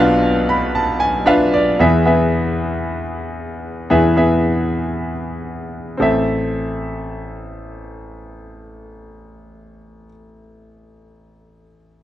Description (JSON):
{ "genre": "pop", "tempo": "free time", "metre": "none", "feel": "none", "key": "A harmonic minor", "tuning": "A4 = 440 Hz", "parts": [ { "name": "clear grand piano", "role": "solo", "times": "0.0-12.0 s", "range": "A1 to B5", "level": "-16 LUFS", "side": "equal", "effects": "none" } ], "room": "light reverb", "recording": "dry, close 1970s-style studio recording", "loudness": "-15 LUFS", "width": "side -13 dB against mid", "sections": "0.0-1.8 A section; 1.8-6.0 B section; 6.0-10.2 C section", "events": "grand piano fill 0.2-1.8", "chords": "0.0 Bdim; 1.8 E; 6.0 Am" }